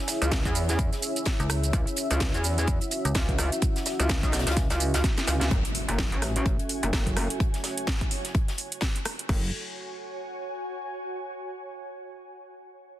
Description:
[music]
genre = bass house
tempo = 127 BPM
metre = 4/4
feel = swing 58% on 16ths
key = F# minor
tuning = A4 = 440 Hz
[part]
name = dark analog pad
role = sustained chords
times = 0.0-9.5 s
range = C#4 to E5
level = -33 LUFS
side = equal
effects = chorus, sidechain pumping
[part]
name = house drum kit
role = drums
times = 0.1-9.4 s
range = crash cymbal, hi-hat, rim click, shaker, snare drum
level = -31 LUFS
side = right 1 dB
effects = none
[part]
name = tight funk drum kit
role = drums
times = 0.1-9.2 s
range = hi-hat, snare drum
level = -38 LUFS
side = left 3 dB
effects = high-pass filter on hats, high-pass filter on snare, high-pass filter on room
[part]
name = metallic wobble bass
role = bass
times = 0.2-9.5 s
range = F#1 to E2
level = -26 LUFS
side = equal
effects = chorus, overdrive, sidechain pumping
[part]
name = electronic kick drum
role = drums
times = 0.3-9.4 s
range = none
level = -27 LUFS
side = equal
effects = none
[part]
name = metallic FM bass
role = bass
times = 1.4-3.1 s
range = C#2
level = -25 LUFS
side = equal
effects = tube saturation, sidechain pumping
[part]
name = impact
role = sound effects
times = 5.5-7.4 s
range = none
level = -37 LUFS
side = equal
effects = none
[part]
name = ethereal airy pad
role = texture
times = 5.9-11.1 s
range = F#4 to G#5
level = -38 LUFS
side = right 1 dB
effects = ensemble chorus, built-in reverb, sidechain pumping
[sound]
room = light reverb, digital ambience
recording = dense, heavily limited modern master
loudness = -24 LUFS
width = side -13 dB against mid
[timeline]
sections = 0.0-5.5 A section; 5.5-9.3 B section; 9.3-11.2 C section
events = drop 0.0-5.5; drum fill 5.0-5.5; band accent 5.4; fade-out on ambient pad 5.5-9.3; impact 5.5-7.4; filter sweep on analog synth pad 5.5-9.3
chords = 0.0 C#m; 5.5 F#m7

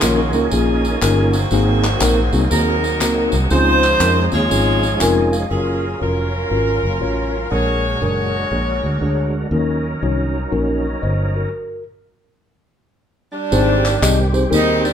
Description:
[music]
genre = uptempo gospel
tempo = 120 BPM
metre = 4/4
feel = swing 64% on 8ths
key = unclear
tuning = A4 = 439 Hz
[part]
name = bright saxophone section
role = melody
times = 0.0-9.3, 13.3-14.9 s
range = G3 to C#5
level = -20 LUFS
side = right 1 dB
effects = none
[part]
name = mellow tine electric piano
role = accompaniment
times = 0.0-14.8 s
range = Ab2 to Ab5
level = -20 LUFS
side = left 2 dB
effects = slow stereo tremolo
[part]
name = bright tonewheel organ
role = sustained chords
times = 0.0-14.9 s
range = Eb3 to Bb4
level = -24 LUFS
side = right 2 dB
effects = fast rotary speaker, overdrive, chorus vibrato
[part]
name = fingered electric bass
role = bass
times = 0.0-14.9 s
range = F1 to F2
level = -20 LUFS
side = equal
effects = none
[part]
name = handclaps and tambourine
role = percussion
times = 0.0-5.4, 13.5-14.9 s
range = none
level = -24 LUFS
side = left 1 dB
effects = none
[sound]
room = moderate large studio reverb, RT60 0.9 s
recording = band playing live in one room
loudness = -15 LUFS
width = side -8 dB against mid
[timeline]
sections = 0.0-5.5 A section; 5.5-13.5 B section; 13.5-14.9 A section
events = tine electric piano fill 4.8-5.5; stop 11.5-13.5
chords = 0.0 Eb9sus4; 1.5 Ab9; 3.5 Dbmaj9; 5.5 Gbmaj7; 7.5 Bb7alt; 9.5 Ebm7; 11.5 N.C.; 13.5 Abmaj7

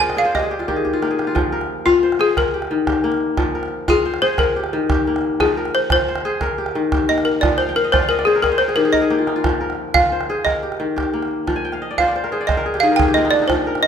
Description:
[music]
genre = west african traditional, West African string and xylophone music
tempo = 119 BPM (dotted quarters)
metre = 12/8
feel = straight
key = F dorian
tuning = A4 = 442 Hz
[part]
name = balafon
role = melody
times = 0.0-13.9 s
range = F4 to Ab5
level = -17 LUFS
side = left 1 dB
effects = none
[part]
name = kora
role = arpeggios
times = 0.0-13.9 s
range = Eb3 to Ab5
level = -20 LUFS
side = left 2 dB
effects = none
[part]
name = calabash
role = percussion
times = 0.0-13.8 s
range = none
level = -24 LUFS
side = right 2 dB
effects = none
[sound]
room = moderate recital hall reverb, RT60 1.7 s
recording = minimal, uncompressed stereo recording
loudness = -16 LUFS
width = side -8 dB against mid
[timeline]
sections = 0.0-1.4 A section; 1.4-13.9 B section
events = kora fill 0.0-1.4, 7.6-9.4, 11.6-13.5; drum fill 0.7-1.4, 8.9-9.4; balafon solo 1.4-13.9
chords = 0.3 Eb5; 1.4 Fm; 2.4 Eb; 3.4 Fm; 4.4 Eb; 5.4 Fm; 6.4 Eb; 7.4 Fm; 8.4 Eb5; 9.4 Fm; 10.5 Eb; 11.5 Fm; 12.5 Eb5

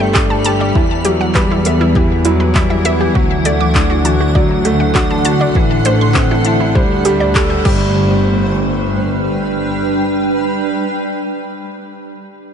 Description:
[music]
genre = piano and strings electronica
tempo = 100 BPM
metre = 4/4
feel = straight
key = G major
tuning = A4 = 439 Hz
[part]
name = granular cloud pad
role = sustained chords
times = 0.0-11.1 s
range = D3 to G5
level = -18 LUFS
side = equal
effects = built-in reverb, sidechain pumping
[part]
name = analog pluck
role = arpeggios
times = 0.0-8.2 s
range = E4 to D6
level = -20 LUFS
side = right 1 dB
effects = chorus, sidechain pumping, ping-pong delay
[part]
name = warm concert grand piano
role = riff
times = 0.0-12.5 s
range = E3 to A4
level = -18 LUFS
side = right 1 dB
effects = ping-pong delay
[part]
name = warm studio double bass section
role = bass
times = 0.0-9.7 s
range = G1 to E2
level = -18 LUFS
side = equal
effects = sidechain pumping
[part]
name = deep house drum kit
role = drums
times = 0.1-7.8 s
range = crash cymbal, handclaps, hi-hat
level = -22 LUFS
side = left 1 dB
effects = none
[part]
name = electronic kick drum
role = drums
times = 0.2-7.8 s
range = none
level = -16 LUFS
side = equal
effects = none
[sound]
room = light reverb, digital ambience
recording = nothing above 11.0 kHz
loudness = -12 LUFS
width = side -8 dB against mid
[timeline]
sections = 0.0-8.0 A section; 8.0-10.4 B section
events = drop 0.0-8.0; band accent 7.4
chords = 0.0 Gsus2; 0.8 Emadd9; 3.2 D; 5.6 Am; 6.8 D7sus4; 7.7 G5; 8.0 G

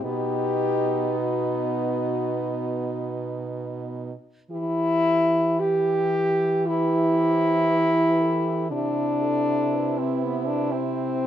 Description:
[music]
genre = classical, lyrical piece for horn quartet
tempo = 53-61 BPM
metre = 4/4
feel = rubato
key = E minor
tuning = A4 = 441 Hz
[part]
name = clear French horn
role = second line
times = 0.0-11.3 s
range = D#4 to G4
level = -30 LUFS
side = right 10 dB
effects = none
[part]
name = warm French horn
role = accompaniment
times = 0.0-11.3 s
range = B3 to G4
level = -23 LUFS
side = left 1 dB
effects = none
[part]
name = clear French horn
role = bass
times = 0.0-11.3 s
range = B2 to E3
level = -30 LUFS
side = right 3 dB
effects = none
[part]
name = mellow French horn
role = melody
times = 0.1-11.3 s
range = F#4 to C5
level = -31 LUFS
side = left 6 dB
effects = none
[sound]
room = light reverb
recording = close, detailed microphones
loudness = -21 LUFS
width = side -10 dB against mid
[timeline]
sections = 0.0-4.5 A section; 4.5-11.3 B section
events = none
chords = 0.0 B; 4.5 Em; 8.7 Cmaj7

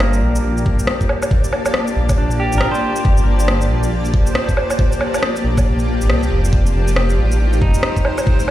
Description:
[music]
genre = future garage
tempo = 138 BPM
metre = 4/4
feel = swing 61% on 16ths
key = G minor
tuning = A4 = 440 Hz
[part]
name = clean electric guitar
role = accompaniment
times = 0.0-4.3, 7.6-8.5 s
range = Bb3 to C5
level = -25 LUFS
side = right 1 dB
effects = vintage 12-bit sampler grit, sidechain pumping, low-pass filter, ping-pong delay
[part]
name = granular cloud pad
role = sustained chords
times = 0.0-8.5 s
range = A3 to A5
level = -22 LUFS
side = left 1 dB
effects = built-in reverb, sidechain pumping
[part]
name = dark detuned saw bass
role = bass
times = 0.0-7.7 s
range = F1 to C2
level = -17 LUFS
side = equal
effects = sidechain pumping
[part]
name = electronic rim click, shaker and woodblock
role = drums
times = 0.0-8.5 s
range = none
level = -22 LUFS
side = equal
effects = small room ambience
[part]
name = backwards swelling texture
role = texture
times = 0.8-8.5 s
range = C5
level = -29 LUFS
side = left 1 dB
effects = built-in reverb
[part]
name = electronic kick drum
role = drums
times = 0.7-8.4 s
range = none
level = -16 LUFS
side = equal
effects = small room ambience
[sound]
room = digital ambience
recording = played on a big sound system in a bare room, large studio reverb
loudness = -14 LUFS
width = side -14 dB against mid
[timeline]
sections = 0.0-8.5 A section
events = filter sweep on clean electric guitar 0.0-8.5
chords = 0.0 Gm9; 6.5 F9

